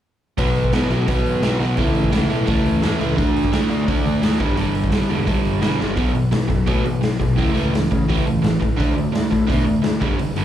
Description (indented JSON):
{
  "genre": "punk rock",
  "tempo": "171 BPM",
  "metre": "4/4",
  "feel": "straight",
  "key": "unclear",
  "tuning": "A4 = 440 Hz",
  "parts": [
    { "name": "crunchy overdriven guitar", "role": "riff", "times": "0.4-10.4 s", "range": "G2 to D4", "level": "-19 LUFS", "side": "equal", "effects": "none" },
    { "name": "growling picked electric bass", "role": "bass", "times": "0.4-10.4 s", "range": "E1 to C#3", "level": "-24 LUFS", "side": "equal", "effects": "overdrive" },
    { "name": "raw garage drum kit", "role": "drums", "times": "0.4-10.4 s", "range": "hi-hat, kick drum, snare drum", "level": "-22 LUFS", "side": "equal", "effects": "none" }
  ],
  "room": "little or no reverb",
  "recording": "live gig heard through the venue's PA, club reverb",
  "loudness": "-16 LUFS",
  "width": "side -11 dB against mid",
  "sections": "0.4-6.0 A section; 6.0-10.4 B section",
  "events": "drum fill 5.8",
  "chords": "0.4 B5; 1.8 A; 3.2 D5; 4.4 G5; 6.0 B5; 7.4 A/C#; 8.8 D5"
}